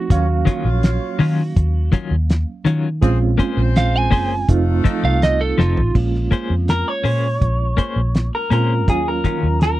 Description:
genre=straight-eighth soul blues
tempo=82 BPM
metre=4/4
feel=straight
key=Bb minor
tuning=A4 = 440 Hz
part: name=electric slide guitar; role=second line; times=0.0-5.9 s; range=F4 to Ab5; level=-23 LUFS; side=right 4 dB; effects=none
part: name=overdriven reed electric piano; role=accompaniment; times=0.0-9.8 s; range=F3 to F5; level=-24 LUFS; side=right 6 dB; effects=fast tremolo
part: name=dark horn section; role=sustained chords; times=0.1-5.7 s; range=A3 to F5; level=-29 LUFS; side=left 1 dB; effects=none
part: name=vintage muted fingered electric bass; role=bass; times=0.1-9.8 s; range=F1 to Eb3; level=-18 LUFS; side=equal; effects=none
part: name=cloth-damped thuddy drum kit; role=drums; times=0.1-9.8 s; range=crash cymbal, hi-hat, kick drum, snare drum, toms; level=-16 LUFS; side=equal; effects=none
part: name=clean electric guitar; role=stabs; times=0.5-9.5 s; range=Eb3 to C5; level=-21 LUFS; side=left 5 dB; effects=tremolo
part: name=electric guitar through a small old amp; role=melody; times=6.7-9.8 s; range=Ab4 to Db5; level=-22 LUFS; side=left 1 dB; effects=none
room=little or no reverb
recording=dry, close 1970s-style studio recording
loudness=-15 LUFS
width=side -15 dB against mid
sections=0.0-6.0 A section; 6.0-9.8 B section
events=electric slide guitar solo 0.0-6.0; drum fill 5.6-6.0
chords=0.1 Ebm9; 3.0 Bbm9; 4.5 F7; 6.0 Bbm9; 8.9 Ebm9

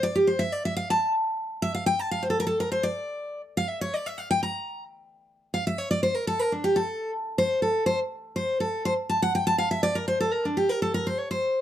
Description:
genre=bluegrass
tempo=245 BPM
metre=4/4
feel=straight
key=unclear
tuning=A4 = 441 Hz
part: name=picked steel-string acoustic guitar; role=solo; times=0.0-11.6 s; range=D4 to Bb5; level=-24 LUFS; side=equal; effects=none
room=light reverb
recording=dark, warm production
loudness=-24 LUFS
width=side -11 dB against mid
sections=0.0-4.9 A section; 4.9-11.6 A section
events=steel-string acoustic guitar solo 0.0-4.9, 4.9-11.6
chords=none

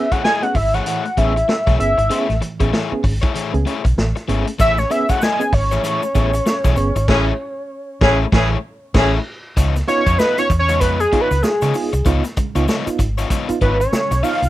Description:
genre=funk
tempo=96 BPM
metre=4/4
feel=swing 60% on 16ths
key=unclear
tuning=A4 = 439 Hz
part: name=fat analog lead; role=melody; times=0.0-14.5 s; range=Ab4 to G#5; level=-18 LUFS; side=equal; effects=chorus
part: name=reed electric piano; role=stabs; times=0.0-14.5 s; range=A2 to G#4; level=-24 LUFS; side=right 4 dB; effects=fast tremolo
part: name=crunchy overdriven guitar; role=accompaniment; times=0.1-14.5 s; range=A3 to Eb5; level=-24 LUFS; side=left 6 dB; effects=none
part: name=vintage muted fingered electric bass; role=bass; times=0.1-14.5 s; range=G1 to Db3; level=-19 LUFS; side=equal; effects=none
part: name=vintage drum kit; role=drums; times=0.1-14.5 s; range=crash cymbal, hi-hat, kick drum, snare drum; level=-20 LUFS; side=equal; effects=none
part: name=tube shaker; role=percussion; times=4.6-14.5 s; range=none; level=-39 LUFS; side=left 4 dB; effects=none
part: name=clear horn section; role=second line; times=7.1-9.1 s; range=E3 to G#4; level=-18 LUFS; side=left 2 dB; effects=none
room=light reverb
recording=rough home demo mix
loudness=-15 LUFS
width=side -15 dB against mid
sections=0.0-9.6 A section; 9.6-14.5 B section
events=band accent 7.1-9.6; analog synth lead solo 9.6-14.5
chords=0.0 Amaj7; 9.6 Db9

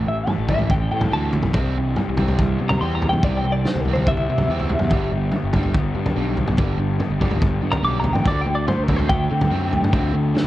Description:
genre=indie rock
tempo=143 BPM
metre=4/4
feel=straight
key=G major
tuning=A4 = 438 Hz
part: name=crunchy overdriven guitar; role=riff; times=0.0-10.5 s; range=G2 to C4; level=-27 LUFS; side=right 6 dB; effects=analog chorus
part: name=raw garage guitar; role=riff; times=0.0-10.5 s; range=A2 to D4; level=-28 LUFS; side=left 7 dB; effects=overdrive, dub echo
part: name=fuzz picked electric bass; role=bass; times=0.0-10.5 s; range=G1 to D3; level=-23 LUFS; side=equal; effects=overdrive
part: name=twelve-string electric guitar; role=melody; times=0.1-10.3 s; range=Bb4 to D6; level=-25 LUFS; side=left 1 dB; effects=tremolo, dub echo
part: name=loose indie drum kit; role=drums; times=0.3-10.5 s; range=kick drum, snare drum, toms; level=-22 LUFS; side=equal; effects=none
room=light reverb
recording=echo-heavy mix, cassette tape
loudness=-18 LUFS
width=side -15 dB against mid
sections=0.0-10.5 A section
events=clean electric guitar solo 0.0-10.5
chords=0.0 Am; 1.6 Cmaj7; 4.9 G; 8.3 D7sus4

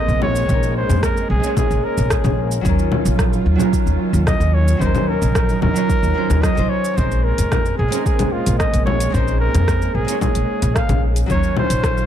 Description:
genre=sunset chillout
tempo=111 BPM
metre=4/4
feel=straight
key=Bb minor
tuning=A4 = 440 Hz
part: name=warm flugelhorn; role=melody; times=0.0-12.1 s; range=F4 to F5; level=-23 LUFS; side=right 1 dB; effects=digital delay
part: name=nylon-string guitar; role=accompaniment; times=0.0-12.1 s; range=Gb3 to Db5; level=-24 LUFS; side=moving between left 7 dB and right 4 dB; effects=auto-pan, low-pass filter, tape echo
part: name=warm studio string section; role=sustained chords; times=0.0-12.1 s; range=Eb3 to F4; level=-26 LUFS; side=right 3 dB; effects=none
part: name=upright bass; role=bass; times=0.1-12.0 s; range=Bb1 to F2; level=-19 LUFS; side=equal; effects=none
part: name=deep house drum kit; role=drums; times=0.1-12.1 s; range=congas, hi-hat, rim click, shaker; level=-24 LUFS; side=left 3 dB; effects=overdrive
part: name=electronic kick drum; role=drums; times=0.5-11.9 s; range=none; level=-21 LUFS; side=equal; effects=overdrive
room=light reverb, studio ambience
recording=dark, warm production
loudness=-15 LUFS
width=side -10 dB against mid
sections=0.0-12.1 A section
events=none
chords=0.0 Bbm11; 2.7 Ebm9; 7.0 Bbm11; 11.3 Ebm9

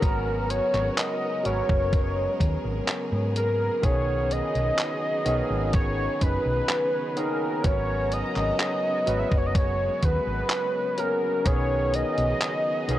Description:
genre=vaporwave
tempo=63 BPM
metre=4/4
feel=straight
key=unclear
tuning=A4 = 440 Hz
part: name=warm velvety synth lead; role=melody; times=0.0-13.0 s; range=A#4 to E5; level=-27 LUFS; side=equal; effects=chorus, cassette tape, tape echo
part: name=barky tine electric piano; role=accompaniment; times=0.0-13.0 s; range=D#3 to B4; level=-30 LUFS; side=equal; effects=overdrive, lush chorus
part: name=clear studio string section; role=sustained chords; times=0.0-13.0 s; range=C#3 to A#5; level=-36 LUFS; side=right 1 dB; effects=none
part: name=hollow-body short-scale fingered electric bass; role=bass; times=0.0-13.0 s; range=F#1 to G#2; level=-28 LUFS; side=equal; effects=none
part: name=detuned 8-bit digital drum machine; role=drums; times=0.0-13.0 s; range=handclaps, hi-hat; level=-30 LUFS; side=equal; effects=none
part: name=electronic kick drum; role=drums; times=0.0-11.7 s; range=none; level=-24 LUFS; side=equal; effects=none
room=little or no reverb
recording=dry, gritty hardware recording, cassette tape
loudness=-22 LUFS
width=side -13 dB against mid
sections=0.0-13.0 A section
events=none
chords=0.0 G#m11; 3.8 B69; 7.6 G#m11; 11.5 B69

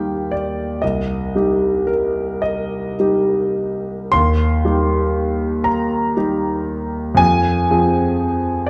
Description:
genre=classical, romantic nocturne for solo piano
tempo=34-41 BPM (dotted quarters)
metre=6/8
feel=rubato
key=unclear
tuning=A4 = 440 Hz
part: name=warm concert grand piano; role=solo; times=0.0-8.7 s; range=C2 to C6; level=-18 LUFS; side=equal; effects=none
room=wet recital hall reverb, RT60 1.3 s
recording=none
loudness=-19 LUFS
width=mono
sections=0.0-8.7 A section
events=none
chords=0.0 Eb; 0.8 Cm; 4.1 Eb; 7.2 Fm

